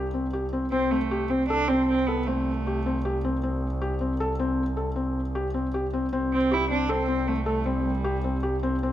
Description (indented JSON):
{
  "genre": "contemporary instrumental, chamber music in an uneven meter",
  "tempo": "156 BPM",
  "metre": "7/4",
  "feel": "straight",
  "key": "unclear",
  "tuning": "A4 = 440 Hz",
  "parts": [
    { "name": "felt-muted upright piano", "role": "arpeggios", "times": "0.0-8.9 s", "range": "C4 to A4", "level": "-27 LUFS", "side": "left 2 dB", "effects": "none" },
    { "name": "rich double bass", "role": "bass", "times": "0.0-8.9 s", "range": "C2", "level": "-30 LUFS", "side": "equal", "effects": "none" },
    { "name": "rich cello", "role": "melody", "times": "0.7-8.6 s", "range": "G3 to E4", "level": "-27 LUFS", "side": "right 3 dB", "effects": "none" }
  ],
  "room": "light reverb",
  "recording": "none",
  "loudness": "-24 LUFS",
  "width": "side -12 dB against mid",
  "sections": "0.0-8.9 A section",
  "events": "none",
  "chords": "0.0 C5",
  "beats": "0.33 | 0.72 1.11 1.50 1.89 2.27 2.66 3.05 | 3.43 3.82 4.20 4.58 4.97 5.35 5.74 | 6.12 6.51 6.89 7.28 7.66 8.05 8.43 | 8.82"
}